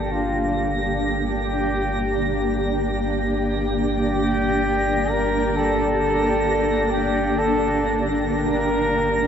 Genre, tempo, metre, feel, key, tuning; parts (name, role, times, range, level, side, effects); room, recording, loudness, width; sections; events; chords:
ambient; 66 BPM; 4/4; straight; G minor; A4 = 440 Hz
warm flugelhorn; melody; 0.0-9.3 s; F4 to Bb4; -24 LUFS; equal; diffuse ambient delay
granular cloud pad; sustained chords; 0.0-9.3 s; Bb3 to G5; -22 LUFS; equal; built-in reverb
warm sub bass; bass; 0.0-9.3 s; G1; -29 LUFS; equal
twinkling granular texture; texture; 0.0-9.3 s; Bb6; -31 LUFS; right 1 dB; built-in reverb
wet huge ambient reverb, RT60 7.6 s; worn, warbling old tape, cassette tape, warbly pitch drift; -19 LUFS; side -8 dB against mid
0.0-9.3 A section
0.0 Gm